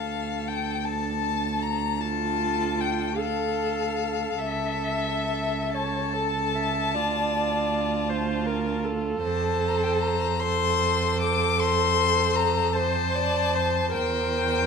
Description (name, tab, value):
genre	classical, slow romantic movement for string quartet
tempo	42-54 BPM (dotted quarters)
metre	12/8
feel	rubato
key	D minor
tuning	A4 = 440 Hz
part	rich violin	melody	0.0-14.7 s	E5 to D6	-27 LUFS	left 8 dB	none
part	clear violin	second line	0.0-14.7 s	F4 to C5	-32 LUFS	left 4 dB	none
part	rich cello	bass	0.0-14.7 s	C#2 to F2	-29 LUFS	right 5 dB	none
part	rich viola	accompaniment	2.0-14.7 s	F4 to E5	-28 LUFS	right 3 dB	none
room	light reverb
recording	close, detailed microphones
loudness	-23 LUFS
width	side -6 dB against mid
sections	0.0-14.7 A section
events	none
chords	0.0 Dm; 4.4 A/C#; 7.0 Dm; 9.2 F; 13.9 C/E